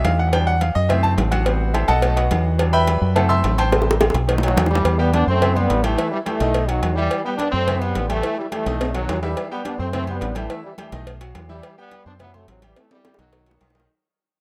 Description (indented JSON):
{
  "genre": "latin, salsa",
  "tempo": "212 BPM",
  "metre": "4/4",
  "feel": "straight",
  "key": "E minor",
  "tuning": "A4 = 439 Hz",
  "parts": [
    { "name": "bright grand piano", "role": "accompaniment", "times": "0.0-13.9 s", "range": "C3 to E6", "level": "-26 LUFS", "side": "equal", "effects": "none" },
    { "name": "deep dub fingered electric bass", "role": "bass", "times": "0.0-13.9 s", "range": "A1 to F#2", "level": "-23 LUFS", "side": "equal", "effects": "none" },
    { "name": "congas", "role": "percussion", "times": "0.0-13.9 s", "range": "none", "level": "-34 LUFS", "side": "equal", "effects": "none" },
    { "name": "cowbell and bongos", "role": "percussion", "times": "0.0-13.9 s", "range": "none", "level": "-26 LUFS", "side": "equal", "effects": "none" },
    { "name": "timbales and agogo bells", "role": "percussion", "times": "0.0-13.8 s", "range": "none", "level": "-33 LUFS", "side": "equal", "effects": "none" },
    { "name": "clear trombone section", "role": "melody", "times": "4.4-13.7 s", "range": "C3 to D4", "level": "-25 LUFS", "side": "equal", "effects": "none" },
    { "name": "warm saxophone section", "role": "second line", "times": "13.5-13.9 s", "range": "B2 to D#3", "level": "-73 LUFS", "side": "equal", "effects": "none" }
  ],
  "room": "little or no reverb",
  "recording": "rough home demo mix",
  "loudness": "-20 LUFS",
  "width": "mono",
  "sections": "0.0-4.9 A section; 4.9-13.9 B section",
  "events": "grand piano solo 0.0-4.9; drum fill 3.7-4.9, 8.7-9.4, 12.8-13.9; fade-out 4.9-13.9",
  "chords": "0.3 Em7; 0.9 F#m7b5; 1.5 Am7; 2.0 B7; 2.6 Em7; 3.2 F#m7b5; 3.7 Am7; 4.3 B7; 4.9 Em; 5.4 F#m7b5; 6.0 A5; 6.5 B; 7.1 Em; 7.7 F#m7b5; 8.2 A5; 8.8 B; 9.4 Em; 9.9 F#m7b5; 10.5 A5; 11.1 B; 11.6 Em; 12.2 F#m7b5; 12.8 Emmaj7; 13.3 B"
}